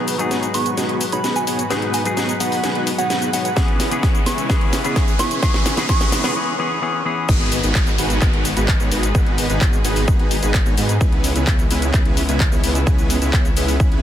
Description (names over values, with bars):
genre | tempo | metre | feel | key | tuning
EDM, festival progressive house | 129 BPM | 4/4 | straight | G# minor | A4 = 438 Hz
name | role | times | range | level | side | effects
semi-hollow electric guitar | accompaniment | 0.0-7.3 s | E3 to G#4 | -25 LUFS | left 4 dB | spring reverb, sidechain pumping, digital delay
lush unison pad | sustained chords | 0.0-14.0 s | G#2 to A#5 | -28 LUFS | equal | chorus, sidechain pumping
dense compressed supersaw | riff | 0.0-14.0 s | B3 to C#5 | -24 LUFS | equal | sidechain pumping, low-pass filter, digital delay
riser and downlifter | sound effects | 0.0-11.0 s | none | -30 LUFS | equal | none
house drum kit | drums | 0.1-14.0 s | crash cymbal, handclaps, hi-hat, shaker, snare drum | -24 LUFS | left 1 dB | none
soft synth bell | melody | 0.5-6.1 s | F#5 to C#6 | -26 LUFS | right 3 dB | chorus, digital delay
electronic kick drum | drums | 3.6-13.9 s | none | -18 LUFS | equal | overdrive
wide detuned saw bass | bass | 7.3-14.0 s | G#1 to G#2 | -22 LUFS | equal | chorus, sidechain pumping
room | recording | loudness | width
light reverb | dense, heavily limited modern master | -16 LUFS | side -11 dB against mid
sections
0.0-7.3 A section; 7.3-14.0 B section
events
build-up 0.0-7.3; drum fill 0.0-6.4; riser 0.0-6.4; filter sweep on supersaw synth 0.0-7.3; break 6.4-7.3; drop 7.3-14.0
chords
0.0 G#m7; 3.6 C#m7; 7.3 G#m7; 11.0 C#m7